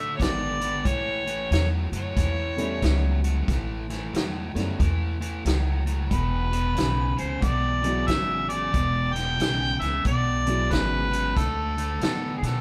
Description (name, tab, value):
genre	electric blues shuffle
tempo	91 BPM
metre	4/4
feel	swing 63% on 8ths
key	A major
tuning	A4 = 440 Hz
part	mellow harmonica	melody	0.0-12.6 s	G#4 to G5	-30 LUFS	equal	none
part	dark grand piano	accompaniment	0.0-11.3 s	F#3 to E4	-34 LUFS	equal	none
part	biting overdriven guitar	riff	0.0-12.6 s	E2 to B3	-34 LUFS	equal	none
part	upright bass	bass	0.0-12.6 s	E1 to B2	-29 LUFS	equal	none
part	vintage drum kit	drums	0.2-12.5 s	hi-hat, kick drum, snare drum	-31 LUFS	equal	none
room	moderate stone room reverb, RT60 1.2 s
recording	band playing live in one room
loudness	-25 LUFS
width	mono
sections	0.0-12.6 A section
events	none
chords	0.0 D5; 0.9 A7; 6.1 E7; 11.4 D5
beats	0.20 | 0.85 1.51 2.17 2.82 | 3.48 4.14 4.79 5.45 | 6.11 6.77 7.42 8.08 | 8.74 9.39 10.05 10.71 | 11.36 12.02